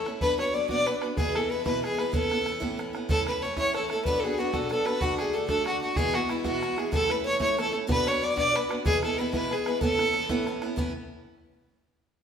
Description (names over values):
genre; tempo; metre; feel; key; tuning
celtic folk, Celtic jig; 125 BPM (dotted quarters); 6/8; straight; A major; A4 = 440 Hz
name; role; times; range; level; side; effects
clear fiddle; melody; 0.0-10.4 s; E4 to D5; -27 LUFS; right 1 dB; none
mellow baroque flute; second line; 0.0-10.5 s; E4 to D5; -32 LUFS; left 4 dB; none
picked steel-string acoustic guitar; accompaniment; 0.0-10.9 s; E2 to F#4; -31 LUFS; right 2 dB; none
bodhran; percussion; 0.1-10.9 s; none; -33 LUFS; right 1 dB; none
room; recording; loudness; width
wet stone room reverb, RT60 1.4 s; band playing live in one room; -24 LUFS; side -7 dB against mid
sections
0.0-3.1 A section; 3.1-10.8 A section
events
none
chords
0.2 Bm; 1.2 E; 2.1 Aadd9; 3.1 A; 4.1 Bm; 5.0 D; 6.0 E; 6.9 A; 7.9 Bm; 8.9 E; 9.8 Aadd9